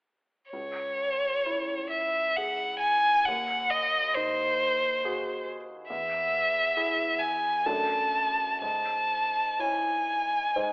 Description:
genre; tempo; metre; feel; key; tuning
classical, romantic duo for violin and grand piano; 67 BPM; 3/4; uneven beats, rubato; C# minor; A4 = 440 Hz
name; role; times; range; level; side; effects
rich violin; melody; 0.5-10.7 s; B#4 to A5; -25 LUFS; equal; none
warm concert grand piano; accompaniment; 0.5-10.7 s; C#2 to C#5; -36 LUFS; equal; none
room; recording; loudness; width
moderate recital hall reverb, RT60 1.4 s; telephone sound; -25 LUFS; side -36 dB against mid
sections
0.5-10.7 A section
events
none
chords
0.5 C#m; 3.3 G#7/D#; 5.9 E; 7.7 D/F#; 8.6 C#m/G#

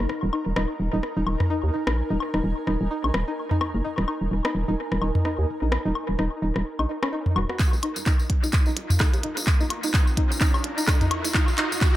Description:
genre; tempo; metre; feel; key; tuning
minimal techno; 128 BPM; 4/4; swing 58% on 16ths; unclear; A4 = 440 Hz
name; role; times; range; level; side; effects
hollow knocking FM bass; bass; 0.0-11.9 s; Eb1 to Eb2; -25 LUFS; equal; sidechain pumping, high-pass filter
booming analog drum machine; percussion; 0.0-11.7 s; rim click, toms, woodblock; -27 LUFS; left 1 dB; overdrive, analog delay
flickering grainy texture; texture; 0.0-12.0 s; F4 to Bb4; -40 LUFS; right 2 dB; none
granular cloud pad; texture; 0.0-12.0 s; Eb4 to Bb5; -34 LUFS; equal; built-in reverb, sidechain pumping
string-like resonator pluck; riff; 0.3-11.7 s; Db4 to Gb4; -31 LUFS; equal; chorus, sidechain pumping, analog delay
electronic kick drum; drums; 7.6-11.9 s; none; -20 LUFS; equal; overdrive
minimal click drum kit; drums; 7.6-11.9 s; handclaps, hi-hat, rim click; -28 LUFS; equal; analog delay
tambourine; percussion; 7.6-11.9 s; none; -33 LUFS; left 1 dB; none
riser; sound effects; 9.4-12.0 s; none; -34 LUFS; right 1 dB; none
room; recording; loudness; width
light reverb; echo-heavy mix; -22 LUFS; side -14 dB against mid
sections
0.0-7.6 A section; 7.6-12.0 B section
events
build-up 7.6-12.0; drum fill 7.6-12.0; filter sweep on synth pluck 7.6-12.0; riser 9.4-12.0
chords
0.0 Eb5

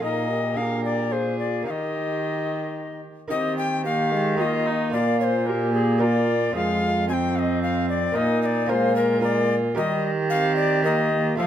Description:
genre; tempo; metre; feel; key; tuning
classical, renaissance-style consort dance; 111 BPM; 3/4; straight; Eb major; A4 = 442 Hz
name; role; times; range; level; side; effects
tenor recorder; melody; 0.0-11.5 s; Ab4 to Ab5; -25 LUFS; left 4 dB; none
warm viola; second line; 0.0-11.5 s; C4 to Bb4; -29 LUFS; right 6 dB; none
clear trombone; accompaniment; 0.0-11.5 s; G3 to G4; -29 LUFS; left 2 dB; none
lute; accompaniment; 0.0-11.5 s; F2 to Bb4; -29 LUFS; right 1 dB; none
warm cello; bass; 0.0-11.5 s; F2 to F3; -26 LUFS; right 1 dB; none
room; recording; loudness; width
moderate large studio reverb, RT60 1.4 s; minimal, uncompressed stereo recording; -20 LUFS; side -10 dB against mid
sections
0.0-3.3 A section; 3.3-11.5 A section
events
none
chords
0.0 Bb7sus4; 0.6 Bb7; 1.7 Eb; 4.9 Bb; 6.5 Fm; 8.2 Bbsus4; 8.7 Bb; 9.8 Eb

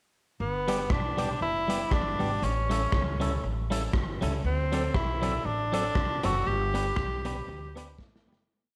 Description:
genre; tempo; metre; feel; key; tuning
ska; 119 BPM; 4/4; swing 56% on 8ths; G major; A4 = 442 Hz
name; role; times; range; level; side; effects
bright tenor saxophone; melody; 0.4-8.0 s; B3 to G4; -33 LUFS; equal; none
upright bass; bass; 0.4-8.5 s; F#1 to D2; -35 LUFS; equal; none
clean electric guitar; accompaniment; 0.7-8.4 s; F#3 to B4; -36 LUFS; equal; spring reverb, slapback echo
raw garage drum kit; drums; 0.7-8.4 s; hi-hat, kick drum, rim click, snare drum; -35 LUFS; equal; slapback echo
room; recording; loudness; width
moderate echo chamber reverb, RT60 1.7 s; none; -29 LUFS; mono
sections
0.4-8.5 A section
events
fade-out 6.5-8.5; drum fill 8.0-8.5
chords
0.4 G; 2.4 A7; 4.4 D7; 6.5 G

